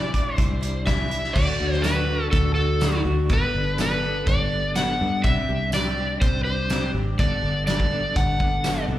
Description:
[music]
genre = folk rock and heartland rock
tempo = 124 BPM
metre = 4/4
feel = straight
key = D mixolydian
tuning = A4 = 440 Hz
[part]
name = overdriven slide guitar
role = melody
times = 0.0-8.8 s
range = A4 to F#5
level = -25 LUFS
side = equal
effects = slapback echo
[part]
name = picked acoustic archtop guitar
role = accompaniment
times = 0.0-9.0 s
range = C3 to A4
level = -31 LUFS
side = left 4 dB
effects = slapback echo
[part]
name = electric guitar through a small old amp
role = riff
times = 0.0-9.0 s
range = C3 to A4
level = -33 LUFS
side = right 2 dB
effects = tremolo, slapback echo
[part]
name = fingered electric bass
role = bass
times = 0.0-9.0 s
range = G1 to G2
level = -25 LUFS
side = equal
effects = none
[part]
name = loose indie drum kit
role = drums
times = 0.1-8.8 s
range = crash cymbal, hi-hat, kick drum, snare drum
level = -25 LUFS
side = equal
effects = none
[part]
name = tambourine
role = percussion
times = 1.8-8.8 s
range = none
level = -41 LUFS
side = right 4 dB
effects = none
[sound]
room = studio reverb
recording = live gig heard through the venue's PA, club reverb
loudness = -20 LUFS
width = side -13 dB against mid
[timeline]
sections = 0.0-1.4 A section; 1.4-9.0 B section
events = none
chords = 0.0 Cadd9; 1.4 D; 3.3 Gadd9; 5.2 Csus2; 7.2 Gadd9

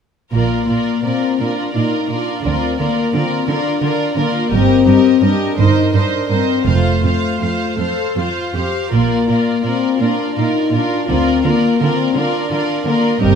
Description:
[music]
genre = classical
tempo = 52-59 BPM (dotted quarters)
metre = 6/8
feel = rubato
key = Bb major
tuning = A4 = 440 Hz
[part]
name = warm studio violin section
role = melody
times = 0.3-13.4 s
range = D5 to F5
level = -27 LUFS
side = right 1 dB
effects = none
[part]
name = rich studio violin section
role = second line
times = 0.3-13.4 s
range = Bb4 to C5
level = -23 LUFS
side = right 1 dB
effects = none
[part]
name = dark studio viola section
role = accompaniment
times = 0.3-13.4 s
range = F4 to Bb4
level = -24 LUFS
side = equal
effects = none
[part]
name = mellow French horn section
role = sustained chords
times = 0.3-13.4 s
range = A3 to Eb4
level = -17 LUFS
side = left 5 dB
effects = none
[part]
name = warm studio cello section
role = bass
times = 0.3-13.3 s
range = F2 to D3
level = -20 LUFS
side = right 4 dB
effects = none
[part]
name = warm studio double bass section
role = bass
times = 0.3-13.4 s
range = F1 to D2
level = -18 LUFS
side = right 6 dB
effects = none
[sound]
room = wet scoring stage reverb, RT60 1.6 s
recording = none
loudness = -14 LUFS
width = side -7 dB against mid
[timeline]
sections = 0.3-13.4 A section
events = none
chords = 0.3 Bb; 2.5 Bb/D; 4.5 Eb/G; 5.6 Cm7/G; 6.7 F; 8.9 Bb; 11.1 Bb/D

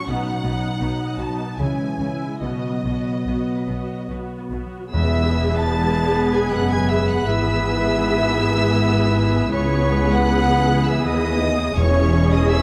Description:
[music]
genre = classical, slow romantic movement for symphony orchestra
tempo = 69-86 BPM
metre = 3/4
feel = rubato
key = E major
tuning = A4 = 440 Hz
[part]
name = warm symphonic violin section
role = melody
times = 0.0-12.6 s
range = D#5 to A6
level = -33 LUFS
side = equal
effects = none
[part]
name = rich studio violin section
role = second line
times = 0.0-12.6 s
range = C#5 to A5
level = -34 LUFS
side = equal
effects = none
[part]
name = rich symphonic viola section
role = accompaniment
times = 0.0-12.6 s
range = G#3 to G#4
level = -29 LUFS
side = equal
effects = none
[part]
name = mellow French horn section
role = sustained chords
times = 0.0-12.6 s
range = E3 to D#4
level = -29 LUFS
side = equal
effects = none
[part]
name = concert harp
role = arpeggios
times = 0.0-12.6 s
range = E2 to E5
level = -31 LUFS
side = equal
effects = none
[part]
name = rich symphonic cello section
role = bass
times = 0.1-12.6 s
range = C#2 to C#3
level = -28 LUFS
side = equal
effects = none
[part]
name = rich symphonic double bass section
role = bass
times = 0.1-12.6 s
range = E1 to D#2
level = -27 LUFS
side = equal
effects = none
[part]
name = clear oboe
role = second line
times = 4.9-12.6 s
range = B4 to C#5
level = -30 LUFS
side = equal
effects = none
[part]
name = flute section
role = second line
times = 4.9-12.6 s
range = C#5 to A5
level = -29 LUFS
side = equal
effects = none
[part]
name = warm clarinet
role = second line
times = 4.9-12.6 s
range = E4 to G#4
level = -30 LUFS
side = equal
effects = none
[part]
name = timpani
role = percussion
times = 4.9-6.1, 11.8-12.6 s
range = E2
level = -25 LUFS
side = equal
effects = none
[sound]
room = moderate scoring stage reverb, RT60 2.0 s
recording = close, detailed microphones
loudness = -20 LUFS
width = mono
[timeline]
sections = 0.0-4.9 A section; 4.9-12.6 B section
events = none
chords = 0.1 B; 1.6 C#m; 2.4 B; 4.9 E; 7.3 E/G#; 9.5 C#m7; 11.8 C#m/E

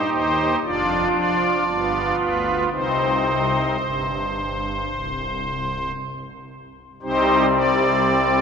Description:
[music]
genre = classical, chorale-style piece for pipe organ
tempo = 56-60 BPM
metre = 4/4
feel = rubato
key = C minor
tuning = A4 = 441 Hz
[part]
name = pipe organ, strings celeste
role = solo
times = 0.0-8.4 s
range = C1 to D5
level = -19 LUFS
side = equal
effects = none
[sound]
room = wet church reverb, RT60 3.7 s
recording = minimal, uncompressed stereo recording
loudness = -19 LUFS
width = side -6 dB against mid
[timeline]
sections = 0.0-7.0 A section; 7.0-8.4 B section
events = none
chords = 0.0 Cm/Eb; 0.6 Dm/F; 1.7 G7; 2.7 Cm

